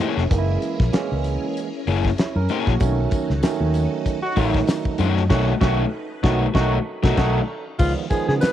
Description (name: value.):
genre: funk.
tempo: 96 BPM.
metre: 4/4.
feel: swing 56% on 16ths.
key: unclear.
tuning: A4 = 441 Hz.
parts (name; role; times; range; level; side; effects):
overdriven semi-hollow guitar; accompaniment; 0.0-7.4 s; A3 to Db5; -25 LUFS; left 9 dB; cassette tape.
phased string machine; sustained chords; 0.0-7.8 s; Db4 to Cb5; -33 LUFS; left 2 dB; ensemble chorus, phaser, cassette tape.
barky tine electric piano; stabs; 0.0-8.5 s; D3 to Db5; -25 LUFS; right 8 dB; cassette tape, tape echo.
damped 70s drum kit; drums; 0.0-8.5 s; crash cymbal, hi-hat, kick drum, snare drum; -22 LUFS; left 1 dB; cassette tape.
fingered electric bass with an envelope filter; bass; 0.2-8.5 s; F1 to Db3; -22 LUFS; equal; none.
tambourine; percussion; 2.8-8.5 s; none; -45 LUFS; left 11 dB; none.
brilliant trombone; second line; 4.2-7.3 s; Gb4; -29 LUFS; right 1 dB; cassette tape.
breathy alto saxophone; melody; 7.8-8.5 s; F4 to Cb5; -23 LUFS; left 1 dB; cassette tape.
room: light reverb, small room ambience.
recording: home recording on cassette.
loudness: -18 LUFS.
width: side -11 dB against mid.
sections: 0.0-7.8 A section.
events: band accent 5.3-7.8.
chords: 0.0 Gb9; 2.8 Cb9; 7.8 Db9.